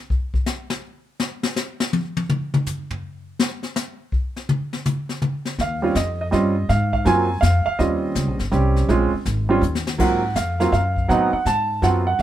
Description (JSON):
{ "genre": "jazz piano trio", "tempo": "164 BPM", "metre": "3/4", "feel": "swing 64% on 8ths", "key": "unclear", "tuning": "A4 = 440 Hz", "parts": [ { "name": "jazz brush drum kit", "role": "drums", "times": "0.1-12.2 s", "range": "brushed snare drum, crash cymbal, hi-hat, kick drum, snare drum, toms", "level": "-23 LUFS", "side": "left 2 dB", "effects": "none" }, { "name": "clear grand piano", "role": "melody", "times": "5.6-12.2 s", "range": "Gb3 to A5", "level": "-19 LUFS", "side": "right 3 dB", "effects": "none" }, { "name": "upright bass", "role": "bass", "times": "5.6-12.2 s", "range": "G1 to A2", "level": "-21 LUFS", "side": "equal", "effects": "none" } ], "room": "moderate club reverb, RT60 0.9 s", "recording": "minimal, uncompressed stereo recording", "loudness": "-19 LUFS", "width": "side -12 dB against mid", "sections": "0.0-5.6 A section; 5.6-12.2 B section", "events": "drum solo 0.0-5.6; drum fill 9.6-10.0", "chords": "0.0 N.C.; 5.6 Eb13; 6.7 Ab7(no3); 7.8 Eb13; 8.9 Bbm7; 9.6 N.C.; 10.0 Ab13; 11.1 Am6", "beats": "| 0.11 0.47 0.84 | 1.20 1.57 1.94 | 2.30 2.67 3.03 | 3.40 3.76 4.13 | 4.49 4.86 5.22 | 5.59 5.96 6.32 | 6.69 7.06 7.42 | 7.79 8.16 8.53 | 8.89 9.26 9.63 | 9.99 10.36 10.73 | 11.09 11.46 11.83 | 12.19" }